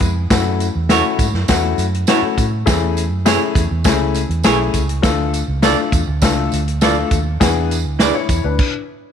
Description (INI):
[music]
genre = uptempo 1960s-style soul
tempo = 101 BPM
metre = 4/4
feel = straight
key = A major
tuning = A4 = 437 Hz
[part]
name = warm upright piano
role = accompaniment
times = 0.0-8.7 s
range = A3 to C#5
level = -20 LUFS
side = left 11 dB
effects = none
[part]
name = vintage muted fingered electric bass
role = bass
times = 0.0-8.6 s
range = B1 to A2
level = -20 LUFS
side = right 1 dB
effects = none
[part]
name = vintage drum kit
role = drums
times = 0.0-8.7 s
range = crash cymbal, hi-hat, kick drum, snare drum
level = -18 LUFS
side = right 1 dB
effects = none
[part]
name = tambourine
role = percussion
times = 0.0-8.4 s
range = none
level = -29 LUFS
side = right 13 dB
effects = none
[part]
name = semi-hollow electric guitar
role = stabs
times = 0.9-8.1 s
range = E4 to D5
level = -21 LUFS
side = right 13 dB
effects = none
[sound]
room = light reverb, studio reverb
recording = 1960s-style stereo with parts hard left and right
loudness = -14 LUFS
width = side -8 dB against mid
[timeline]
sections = 0.0-9.1 A section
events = stop 8.6-9.1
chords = 0.3 F#m7; 2.7 Amaj7/E; 5.0 Dm; 7.4 E7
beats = | 0.31 0.90 1.49 2.08 | 2.67 3.26 3.86 4.45 | 5.04 5.63 6.22 6.82 | 7.41 8.00 8.59